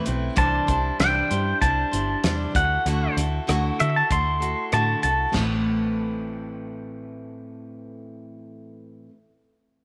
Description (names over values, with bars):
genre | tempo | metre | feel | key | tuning
folk rock and heartland rock | 96 BPM | 4/4 | straight | A dorian | A4 = 440 Hz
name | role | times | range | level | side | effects
picked steel-string acoustic guitar | accompaniment | 0.0-9.2 s | A2 to C5 | -30 LUFS | equal | none
deep dub picked electric bass | bass | 0.1-9.0 s | G1 to D3 | -29 LUFS | equal | none
damped 70s drum kit | drums | 0.1-5.5 s | crash cymbal, hi-hat, kick drum, rim click, snare drum, toms | -29 LUFS | equal | none
pedal steel guitar | melody | 0.4-5.3 s | E5 to C6 | -26 LUFS | equal | slapback echo
room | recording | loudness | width
light reverb, small room ambience | none | -23 LUFS | mono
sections
0.0-5.3 A section; 5.3-7.8 B section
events
pedal steel guitar solo 0.0-5.3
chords
0.4 Cadd9; 2.5 Dadd9; 5.3 Amadd9